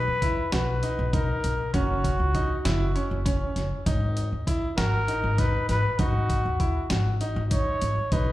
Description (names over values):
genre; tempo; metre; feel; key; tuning
progressive instrumental, band music in an uneven meter; 198 BPM (eighths); 7/8; straight; G# minor; A4 = 440 Hz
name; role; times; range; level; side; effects
breathy trumpet; melody; 0.0-8.3 s; F#4 to C#5; -28 LUFS; equal; none
upright bass; bass; 0.0-8.3 s; F#1 to F#2; -26 LUFS; equal; none
bright grand piano; arpeggios; 0.2-8.3 s; C#4 to F#4; -32 LUFS; equal; digital delay
dusty soul sampler-style drum kit; drums; 0.2-8.3 s; hi-hat, kick drum, snare drum; -28 LUFS; equal; none
phased analog pad; accompaniment; 8.1-8.3 s; C#4 to B4; -51 LUFS; equal; none
room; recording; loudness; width
light reverb, studio reverb; live gig heard through the venue's PA, club reverb; -23 LUFS; side -15 dB against mid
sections
0.0-8.3 A section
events
none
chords
0.0 Bmaj7; 1.7 F#5; 3.9 G#5